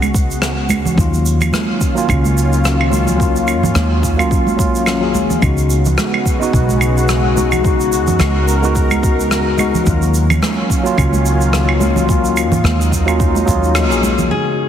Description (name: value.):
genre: sunset chillout.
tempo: 108 BPM.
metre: 4/4.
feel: swing 56% on 16ths.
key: Eb minor.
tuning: A4 = 440 Hz.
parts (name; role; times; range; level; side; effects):
lush unison pad; sustained chords; 0.0-14.7 s; Db3 to Bb4; -21 LUFS; equal; chorus.
woody fretless electric bass; bass; 0.0-14.3 s; Bb1 to Ab2; -17 LUFS; equal; none.
claves, shaker and rim click; drums; 0.0-14.3 s; none; -21 LUFS; right 1 dB; none.
congas; percussion; 0.0-14.3 s; none; -22 LUFS; right 4 dB; none.
electronic kick drum; drums; 0.1-13.6 s; none; -18 LUFS; equal; none.
mellow tine electric piano; accompaniment; 0.9-14.7 s; Db3 to Ab4; -18 LUFS; moving between left 6 dB and right 5 dB; overdrive, auto-pan, ping-pong delay.
nylon-string guitar; melody; 14.3-14.7 s; Ab4; -19 LUFS; left 1 dB; none.
room: moderate lush hall reverb, RT60 2.6 s.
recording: heavily compressed radio sound, multiband compression.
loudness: -12 LUFS.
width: side -9 dB against mid.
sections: 0.0-14.3 A section.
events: band accent 13.8.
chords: 0.0 Db7sus4; 1.0 Ebm9; 5.4 Db7sus4; 9.9 Ebm9.